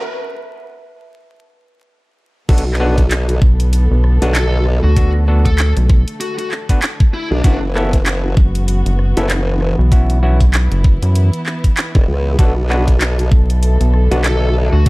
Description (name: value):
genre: glitch hop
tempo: 97 BPM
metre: 4/4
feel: swing 58% on 16ths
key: B minor pentatonic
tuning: A4 = 440 Hz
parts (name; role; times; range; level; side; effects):
- warm chamber string section; sustained chords; 2.5-14.9 s; D3 to A4; -26 LUFS; equal; sidechain pumping
- overdriven clav; stabs; 2.5-14.9 s; B3 to B4; -23 LUFS; equal; sidechain pumping, digital delay
- formant-sweep wobble bass; bass; 2.5-14.7 s; E1 to C#2; -15 LUFS; equal; chorus, tube saturation, high-pass filter
- drum and bass drum kit; drums; 2.5-14.9 s; crash cymbal, handclaps, hi-hat, rim click; -22 LUFS; equal; small room ambience
- electronic kick drum; drums; 2.5-14.9 s; none; -12 LUFS; equal; small room ambience
- rubbery square bass; bass; 3.4-14.9 s; F#1 to F#2; -12 LUFS; equal; none
- high-gain lead guitar; melody; 4.3-7.6, 14.2-14.9 s; D4 to A4; -24 LUFS; left 2 dB; distortion, vintage 12-bit sampler grit, digital delay
- warbly tape-like pad; texture; 13.2-14.9 s; E5 to A5; -32 LUFS; equal; chorus, built-in reverb, sidechain pumping
room: digital ambience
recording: dark, warm production, vinyl crackle, high-pass filter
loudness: -12 LUFS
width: side -22 dB against mid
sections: 0.0-2.5 A section; 2.5-14.9 B section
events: build-up 0.0-2.5; break 0.0-2.5; drop 2.5-14.9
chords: 0.0 N.C.; 2.5 Bm7; 7.4 F#7sus4; 12.4 Bm7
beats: | 0.02 0.64 1.26 1.88 | 2.49 3.11 3.73 4.35 | 4.97 5.59 6.21 6.82 | 7.44 8.06 8.68 9.30 | 9.92 10.54 11.15 11.77 | 12.39 13.01 13.63 14.25 | 14.87